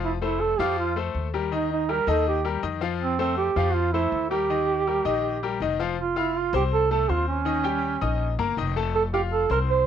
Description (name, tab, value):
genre	latin, salsa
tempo	162 BPM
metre	4/4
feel	straight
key	unclear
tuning	A4 = 440 Hz
part	warm duduk	melody	0.0-9.9 s	C4 to C5	-24 LUFS	right 7 dB	cassette tape
part	bright baby grand piano	accompaniment	0.0-9.8 s	Eb3 to F6	-27 LUFS	left 9 dB	cassette tape
part	upright bass	bass	0.0-9.9 s	F1 to F2	-29 LUFS	left 1 dB	none
room	moderate small room ambience, RT60 0.5 s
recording	home recording on cassette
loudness	-22 LUFS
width	side -9 dB against mid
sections	0.0-6.0 A section; 6.0-9.9 B section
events	none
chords	0.0 F; 1.5 Eb; 3.0 Fmaj7; 4.5 Eb; 6.0 F; 7.5 Eb7; 8.9 F